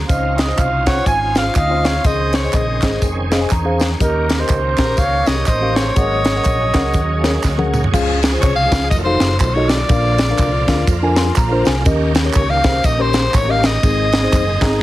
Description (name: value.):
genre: uptempo gospel.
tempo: 122 BPM.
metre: 4/4.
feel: swing 60% on 8ths.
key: Db major.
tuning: A4 = 440 Hz.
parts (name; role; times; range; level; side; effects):
mellow tine electric piano; accompaniment; 0.0-14.8 s; Ab2 to C6; -21 LUFS; left 2 dB; slow stereo tremolo.
bright tonewheel organ; sustained chords; 0.0-14.8 s; D3 to Ab4; -25 LUFS; right 3 dB; slow rotary speaker, overdrive, chorus vibrato.
hollow-body short-scale fingered electric bass; bass; 0.0-14.8 s; F1 to F2; -20 LUFS; equal; none.
breathy trumpet; melody; 0.1-7.7 s; Bb4 to Ab5; -22 LUFS; right 3 dB; tape echo.
tight funk drum kit; drums; 0.1-14.7 s; crash cymbal, hi-hat, kick drum, ride cymbal, snare drum, toms; -18 LUFS; equal; none.
tambourine and handclaps; percussion; 0.1-14.7 s; none; -30 LUFS; right 5 dB; none.
edgy soprano saxophone; melody; 0.9-14.8 s; Bb4 to Ab5; -20 LUFS; left 2 dB; none.
room: light reverb, small room ambience.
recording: heavily compressed radio sound, multiband compression.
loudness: -13 LUFS.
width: side -15 dB against mid.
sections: 0.0-7.9 A section; 7.9-14.8 B section.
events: tine electric piano fill 3.0-4.0, 10.9-11.9, 14.3-14.8; drum fill 7.4-7.9.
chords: 0.1 Dbmaj9; 2.0 Bbm11; 4.0 Eb7; 6.0 Ab9sus4; 7.9 Db; 8.9 F7b9; 9.9 Bb; 11.9 Eb7; 13.8 Ab.